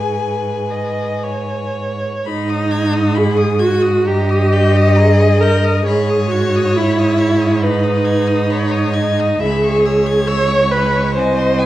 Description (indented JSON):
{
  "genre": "classical, slow romantic movement for string quartet",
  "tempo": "53-72 BPM",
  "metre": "4/4",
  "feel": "rubato",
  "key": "G# minor",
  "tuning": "A4 = 440 Hz",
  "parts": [
    { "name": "warm violin", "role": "melody", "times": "0.0-11.7 s", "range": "G#5 to G#6", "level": "-26 LUFS", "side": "left 9 dB", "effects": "none" },
    { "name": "rich violin", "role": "second line", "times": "0.0-11.7 s", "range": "B4 to G#5", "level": "-21 LUFS", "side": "left 2 dB", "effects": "none" },
    { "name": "warm viola", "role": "accompaniment", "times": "0.0-11.7 s", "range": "D#4 to D#5", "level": "-17 LUFS", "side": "right 1 dB", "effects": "none" },
    { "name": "rich cello", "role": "bass", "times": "0.0-11.7 s", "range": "B#1 to G#2", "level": "-17 LUFS", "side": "right 2 dB", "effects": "none" }
  ],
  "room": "wet recital hall reverb, RT60 1.7 s",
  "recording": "dark, warm production",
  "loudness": "-13 LUFS",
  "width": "side -14 dB against mid",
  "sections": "0.0-2.3 A section; 2.3-11.7 B section",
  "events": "none",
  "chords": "0.0 G#m; 4.1 D#/G; 5.9 G#m; 9.4 C#m7"
}